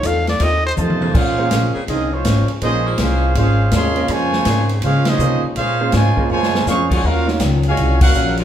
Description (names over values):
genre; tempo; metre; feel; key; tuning
jazz, big band swing; 163 BPM; 4/4; swing 65% on 8ths; Bb minor; A4 = 440 Hz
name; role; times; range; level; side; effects
warm trumpet; melody; 0.0-0.7 s; C5 to F5; -20 LUFS; equal; none
picked acoustic archtop guitar; accompaniment; 0.0-8.4 s; Eb3 to C5; -26 LUFS; left 5 dB; none
warm baby grand piano; accompaniment; 0.0-7.4 s; A3 to Db5; -25 LUFS; right 4 dB; none
upright bass; bass; 0.0-8.4 s; Ab1 to Db3; -18 LUFS; equal; none
swinging big-band drum kit; drums; 0.0-8.4 s; crash cymbal, hi-hat, kick drum, ride cymbal, snare drum, toms; -21 LUFS; equal; none
edgy saxophone section; sustained chords; 0.4-8.4 s; Db3 to C5; -31 LUFS; equal; none
clear trumpet section; melody; 0.8-8.4 s; Ab3 to Db6; -20 LUFS; right 1 dB; none
mellow trombone section; second line; 0.8-8.4 s; Bb2 to Gb4; -24 LUFS; right 4 dB; none
room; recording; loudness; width
wet large studio reverb, RT60 0.9 s; heard from further back in the room; -14 LUFS; side -10 dB against mid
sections
0.0-1.1 A section; 1.1-8.4 B section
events
trumpet solo 0.0-1.1; drum fill 0.8-1.1, 6.3-6.7; band accent 5.0, 8.0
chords
0.0 F7; 1.1 Bbm9; 7.0 Ebm9